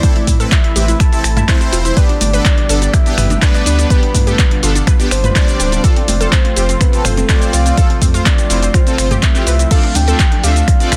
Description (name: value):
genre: progressive house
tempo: 124 BPM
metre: 4/4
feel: straight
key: unclear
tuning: A4 = 440 Hz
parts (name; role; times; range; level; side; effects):
- soft octave-layered synth lead; melody; 0.0-11.0 s; A4 to A5; -24 LUFS; equal; chorus, vintage 12-bit sampler grit, sidechain pumping, digital delay
- lush unison pad; sustained chords; 0.0-11.0 s; B2 to G4; -27 LUFS; equal; chorus, sidechain pumping
- analog pluck; arpeggios; 0.0-11.0 s; C4 to D5; -26 LUFS; equal; chorus, cassette tape, sidechain pumping, digital delay
- soft supersaw; stabs; 0.0-10.9 s; G3 to E5; -24 LUFS; equal; phaser, sidechain pumping, digital delay
- big-room dance drum kit; drums; 0.0-11.0 s; crash cymbal, finger snaps, handclaps, hi-hat, shaker; -22 LUFS; equal; none
- electronic kick drum; drums; 0.0-10.8 s; none; -14 LUFS; equal; none
- electronic congas and toms; percussion; 0.0-11.0 s; none; -25 LUFS; equal; overdrive, sidechain pumping on perc, sidechain pumping on toms
- saturated sub bass; bass; 0.3-11.0 s; D1 to A2; -18 LUFS; equal; sidechain pumping
room: little or no reverb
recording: dense, heavily limited modern master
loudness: -13 LUFS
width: mono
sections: 0.0-11.0 A section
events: none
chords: 0.0 Am; 2.0 G; 5.8 F; 9.7 Dm7